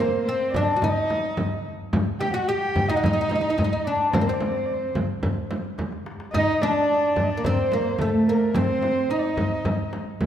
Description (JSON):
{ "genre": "Turkish makam ensemble", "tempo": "109 BPM", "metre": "4/4", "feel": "straight", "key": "unclear", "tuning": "A4 = 440 Hz", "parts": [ { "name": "oud", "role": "melody", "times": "0.0-9.9 s", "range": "A3 to G4", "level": "-24 LUFS", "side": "equal", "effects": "none" }, { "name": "dark kamancheh", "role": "second line", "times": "0.0-9.9 s", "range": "A4 to G5", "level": "-30 LUFS", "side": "left 2 dB", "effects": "none" }, { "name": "warm cello", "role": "second line", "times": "0.0-9.9 s", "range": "A3 to G4", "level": "-30 LUFS", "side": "right 2 dB", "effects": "none" }, { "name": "darbuka", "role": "percussion", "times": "0.0-10.3 s", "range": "none", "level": "-30 LUFS", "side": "left 2 dB", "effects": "none" }, { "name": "frame drum", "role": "percussion", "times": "0.5-10.3 s", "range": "none", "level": "-28 LUFS", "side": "right 1 dB", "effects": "none" } ], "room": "wet concert hall reverb, RT60 2.3 s", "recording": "minimal, uncompressed stereo recording", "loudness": "-21 LUFS", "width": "side -10 dB against mid", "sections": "0.0-10.3 A section", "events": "drum fill 5.8-6.3", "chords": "none" }